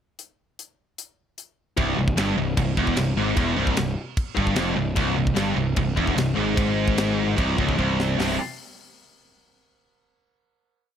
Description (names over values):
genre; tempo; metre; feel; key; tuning
heavy metal; 150 BPM; 4/4; straight; unclear; A4 = 439 Hz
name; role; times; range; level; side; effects
tight metal drum kit; drums; 0.2-8.3 s; crash cymbal, hi-hat, kick drum, snare drum; -27 LUFS; equal; none
heavy high-gain guitar; riff; 1.8-8.3 s; C2 to C3; -26 LUFS; left 9 dB; distortion
scooped high-gain guitar; riff; 1.8-8.3 s; C2 to C3; -25 LUFS; right 10 dB; distortion
fuzz picked electric bass; bass; 1.8-8.4 s; C1 to Ab1; -27 LUFS; equal; overdrive
room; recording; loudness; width
studio ambience; none; -20 LUFS; side -9 dB against mid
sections
0.2-1.8 pickup bar; 1.8-8.2 riff; 8.2-9.8 final chord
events
drum fill 7.8-8.2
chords
0.2 N.C.; 1.8 C; 8.2 C5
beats
| 0.18 0.58 0.98 1.37 | 1.77 2.17 2.57 2.96 | 3.36 3.76 4.16 4.56 | 4.96 5.36 5.76 6.17 | 6.57 6.97 7.38 7.78 | 8.18